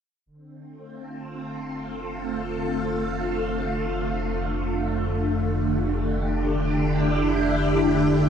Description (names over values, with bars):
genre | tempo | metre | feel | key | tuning
ambient, sequencer-driven space music | free time | none | none | unclear | A4 = 445 Hz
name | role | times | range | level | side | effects
phased string machine | sustained chords | 0.3-8.3 s | D3 to A4 | -24 LUFS | equal | ensemble chorus, phaser
fat analog bass | bass | 0.3-8.3 s | F1 | -29 LUFS | equal | none
room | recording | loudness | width
wet huge ambient reverb, RT60 9.1 s | dark, warm production | -22 LUFS | side -8 dB against mid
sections
0.3-8.3 A section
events
fade-in on string machine 0.3-8.3; fade-in on analog synth bass 0.3-8.3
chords
0.3 F6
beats
free time